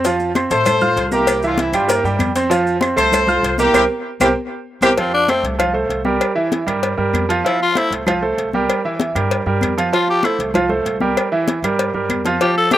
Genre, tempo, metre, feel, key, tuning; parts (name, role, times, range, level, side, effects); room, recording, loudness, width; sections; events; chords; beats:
latin, salsa; 194 BPM; 4/4; straight; F major; A4 = 442 Hz
clear concert grand piano; accompaniment; 0.0-12.8 s; E3 to F6; -18 LUFS; right 3 dB; slapback echo
upright bass; bass; 0.0-12.4 s; C2 to A2; -26 LUFS; left 1 dB
cowbell; percussion; 0.0-12.8 s; -24 LUFS; left 6 dB; slapback echo
maracas; percussion; 0.0-4.9 s; -33 LUFS; right 2 dB
congas; percussion; 0.1-12.8 s; -24 LUFS; left 3 dB
claves; percussion; 0.4-12.8 s; -25 LUFS; right 2 dB
mellow horn section; melody; 0.5-4.9 s; C4 to C5; -18 LUFS; left 2 dB; slapback echo
raspy tenor saxophone; melody; 5.0-5.4, 7.5-7.9, 9.9-10.4, 12.4-12.8 s; C4 to A4; -17 LUFS; left 3 dB
little or no reverb; recorded outdoors, with no room sound; -15 LUFS; side -13 dB against mid
0.0-5.0 A section; 5.0-12.8 B section
band accent 3.7-5.0; drum fill 4.2-5.0; tenor saxophone solo 5.0-12.8
0.0 F; 1.3 C7; 2.5 F; 3.7 C7(no3); 5.0 Fadd9; 6.2 Fsus24; 7.5 Fadd9; 8.7 Fsus24; 9.9 Fadd9; 11.2 Fsus24
| 0.04 0.35 0.66 0.97 | 1.28 1.59 1.89 2.20 | 2.51 2.82 3.13 3.44 | 3.74 4.05 4.36 4.67 | 4.98 5.29 5.60 5.90 | 6.21 6.52 6.83 7.14 | 7.45 7.76 8.07 8.38 | 8.69 9.00 9.31 9.62 | 9.93 10.24 10.55 10.86 | 11.17 11.47 11.79 12.10 | 12.40 12.71